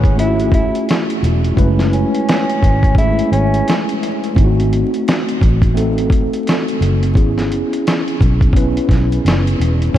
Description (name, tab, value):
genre	lo-fi hip hop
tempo	86 BPM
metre	4/4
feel	swing 60% on 16ths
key	F# minor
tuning	A4 = 440 Hz
part	breathy tenor saxophone	melody	0.0-3.8, 10.0 s	C#4 to E4	-21 LUFS	right 1 dB	ping-pong delay
part	mellow tine electric piano	accompaniment	0.0-10.0 s	G#3 to F#5	-18 LUFS	equal	medium stereo tremolo
part	vintage muted fingered electric bass	bass	0.0-10.0 s	E1 to B1	-16 LUFS	equal	none
part	dusty soul sampler-style drum kit	drums	0.0-10.0 s	hi-hat, kick drum, snare drum	-16 LUFS	equal	none
room	light reverb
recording	vinyl crackle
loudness	-12 LUFS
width	side -12 dB against mid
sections	0.0-10.0 A section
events	none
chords	0.0 F#m9; 4.4 G#7b9; 7.2 C#m7/G#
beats	0.17 0.87 | 1.57 2.27 2.96 3.66 | 4.36 5.06 5.76 6.45 | 7.15 7.85 8.55 9.24 | 9.94